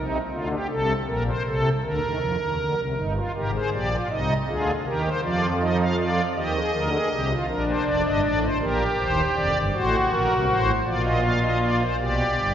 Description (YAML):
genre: classical, baroque-style 3-part fugue for pipe organ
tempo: 53 BPM (dotted quarters)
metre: 6/8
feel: straight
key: Eb major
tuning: A4 = 444 Hz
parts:
  - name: pipe organ, strings celeste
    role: solo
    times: 0.0-12.5 s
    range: Eb1 to F5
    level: -21 LUFS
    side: equal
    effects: none
room: wet church reverb, RT60 2.7 s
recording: recorded in a church or concert hall, nothing above 7.8 kHz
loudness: -21 LUFS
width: side -9 dB against mid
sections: 0.0-3.0 A section; 3.0-12.0 B section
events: none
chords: 0.0 Cm; 0.7 Bbsus2; 1.8 Bb/D; 3.0 Eb/G; 4.1 Fm7/C; 5.2 Dm/F; 6.4 Eb; 7.5 Bb; 8.6 Cm7; 9.7 Am6; 10.9 Bb; 12.0 G